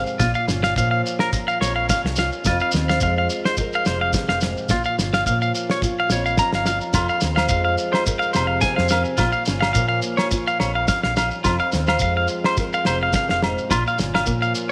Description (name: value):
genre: highlife guitar band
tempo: 106 BPM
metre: 4/4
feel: swing 53% on 16ths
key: F minor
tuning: A4 = 440 Hz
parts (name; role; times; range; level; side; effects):
- fingerpicked old ladder-braced acoustic guitar; accompaniment; 0.0-14.7 s; F2 to Bb4; -29 LUFS; equal; none
- clean electric guitar; arpeggios; 0.0-14.7 s; F4 to Bb5; -24 LUFS; equal; tape echo
- hollow-body short-scale fingered electric bass; bass; 0.0-14.5 s; F1 to Bb2; -28 LUFS; equal; none
- shekere; percussion; 0.1-14.7 s; none; -30 LUFS; equal; none
- damped 70s drum kit; drums; 0.2-14.4 s; kick drum, snare drum; -27 LUFS; equal; none
- agogo bells; percussion; 6.9-14.3 s; none; -32 LUFS; equal; none
room: moderate plate reverb, RT60 2.9 s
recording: none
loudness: -20 LUFS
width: mono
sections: 0.0-14.7 A section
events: none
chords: 0.2 Bbm; 2.5 Fm; 4.7 Bbm; 7.0 Fm; 9.2 Bbm; 11.5 Fm; 13.7 Bbm